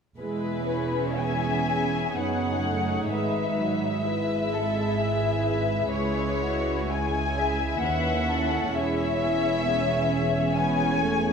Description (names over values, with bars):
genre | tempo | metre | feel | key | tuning
classical, slow romantic movement for string orchestra | 63 BPM | 3/4 | uneven beats, rubato | E major | A4 = 441 Hz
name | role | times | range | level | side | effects
dark studio violin section | melody | 0.2-11.3 s | B4 to G#5 | -28 LUFS | left 5 dB | none
dark studio violin section | second line | 0.2-11.3 s | F#4 to E5 | -32 LUFS | left 3 dB | none
rich studio viola section | accompaniment | 0.2-11.3 s | F#3 to E4 | -29 LUFS | right 2 dB | none
dark chamber cello section | bass | 0.2-11.3 s | C#2 to G#2 | -32 LUFS | right 2 dB | none
dark studio double bass section | bass | 0.2-11.3 s | E1 to D#2 | -32 LUFS | right 3 dB | none
room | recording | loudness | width
moderate scoring stage reverb, RT60 1.7 s | none | -23 LUFS | side -6 dB against mid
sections
0.2-11.3 A section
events
none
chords
0.2 E; 3.1 E/G#; 5.9 C#m; 8.7 C#m/E